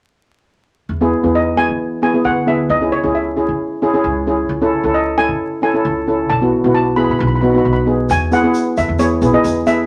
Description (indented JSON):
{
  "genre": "calypso",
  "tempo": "133 BPM",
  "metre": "4/4",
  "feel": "straight",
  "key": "E major",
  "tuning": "A4 = 440 Hz",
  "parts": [
    { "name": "upright bass", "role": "bass", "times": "0.9-9.9 s", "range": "B1 to E3", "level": "-24 LUFS", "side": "equal", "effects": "none" },
    { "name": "steel pan", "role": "accompaniment", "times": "1.0-9.9 s", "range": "B3 to A4", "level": "-17 LUFS", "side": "equal", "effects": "none" },
    { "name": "steel pan", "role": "melody", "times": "1.4-9.9 s", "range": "C#5 to B5", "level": "-21 LUFS", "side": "equal", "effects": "none" },
    { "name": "tube shaker", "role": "percussion", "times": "8.1-9.8 s", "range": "none", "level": "-38 LUFS", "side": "equal", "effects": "none" }
  ],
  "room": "wet studio reverb, RT60 0.5 s",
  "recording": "vinyl crackle",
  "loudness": "-16 LUFS",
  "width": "mono",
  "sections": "0.9-8.1 A section; 8.1-9.9 B section",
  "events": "none",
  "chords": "0.9 E; 2.7 C#m; 4.5 Amaj7/C#; 6.3 B7sus4; 7.2 B; 8.1 E",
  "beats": "| 0.89 1.34 1.79 2.24 | 2.69 3.14 3.59 4.04 | 4.50 4.95 5.40 5.85 | 6.30 6.75 7.20 7.65 | 8.10 8.55 9.00 9.45"
}